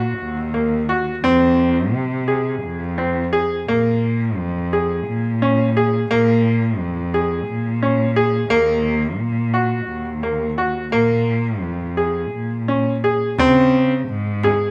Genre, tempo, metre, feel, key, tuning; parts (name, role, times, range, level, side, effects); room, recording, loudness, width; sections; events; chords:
contemporary instrumental, chamber music in an uneven meter; 173 BPM (eighths); 7/8; straight; Bb minor; A4 = 436 Hz
bright grand piano; arpeggios; 0.0-14.7 s; Bb3 to Ab4; -21 LUFS; equal
muted cello; bass; 0.0-14.7 s; Eb2 to Db3; -23 LUFS; equal
frame drum; percussion; 13.4-14.7 s; -29 LUFS; equal
moderate recital hall reverb, RT60 1.5 s; close, detailed microphones; -19 LUFS; mono
0.0-13.4 A section; 13.4-14.7 B section
0.0 Ebm; 1.2 Fm; 3.7 Bb7(no3); 8.5 Ebm; 10.9 Bb7(no3); 13.4 Db5